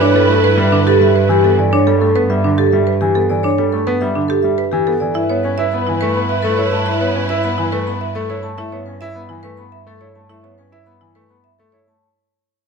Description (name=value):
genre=classical, minimalist pattern music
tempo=105 BPM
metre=3/4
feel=straight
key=unclear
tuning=A4 = 440 Hz
part: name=vibraphone with medium mallets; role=melody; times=0.0-12.1 s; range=G4 to B5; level=-20 LUFS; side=left 11 dB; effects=none
part: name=bright alto flute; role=second line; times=0.0-1.5, 5.2-8.4 s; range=B4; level=-23 LUFS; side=right 3 dB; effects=none
part: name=clear grand piano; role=accompaniment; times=0.0-12.1 s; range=D3 to E4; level=-22 LUFS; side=left 1 dB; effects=none
part: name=warm studio string section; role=sustained chords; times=0.0-1.5, 5.2-8.4 s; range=E4 to B4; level=-23 LUFS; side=left 1 dB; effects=none
part: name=marimba with medium hard mallets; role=arpeggios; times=0.0-11.9 s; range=D4 to E5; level=-18 LUFS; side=right 7 dB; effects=none
part: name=warm cello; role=bass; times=0.0-11.9 s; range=G2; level=-20 LUFS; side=right 3 dB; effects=none
room=light reverb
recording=close, detailed microphones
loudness=-13 LUFS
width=side -5 dB against mid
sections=0.0-12.0 A section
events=fade-out 1.0-12.0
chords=0.0 G69; 5.2 Asus2/G